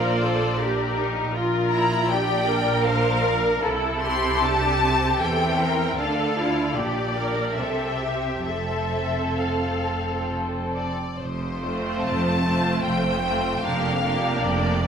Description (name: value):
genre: classical, slow romantic movement for string orchestra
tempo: 64-81 BPM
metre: 3/4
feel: rubato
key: F major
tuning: A4 = 440 Hz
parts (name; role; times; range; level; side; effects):
- rich studio violin section; melody; 0.0-14.9 s; C5 to C6; -27 LUFS; left 3 dB; none
- rich studio violin section; second line; 0.0-14.9 s; C4 to D5; -27 LUFS; left 2 dB; none
- clear studio viola section; accompaniment; 0.0-14.9 s; A3 to Bb4; -26 LUFS; right 2 dB; none
- bright studio cello section; bass; 0.0-14.9 s; F2 to E3; -29 LUFS; right 2 dB; none
- rich studio double bass section; bass; 0.0-14.9 s; F1 to E2; -29 LUFS; right 2 dB; none
room: wet recital hall reverb, RT60 1.4 s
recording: minimal, uncompressed stereo recording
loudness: -21 LUFS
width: side -7 dB against mid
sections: 0.0-11.2 A section; 11.2-14.9 B section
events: none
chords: 0.0 Bb; 1.3 Gm7/Bb; 3.6 C7; 6.0 Dm; 6.8 Gm/Bb; 7.6 C6; 8.5 F; 13.6 Gm7/F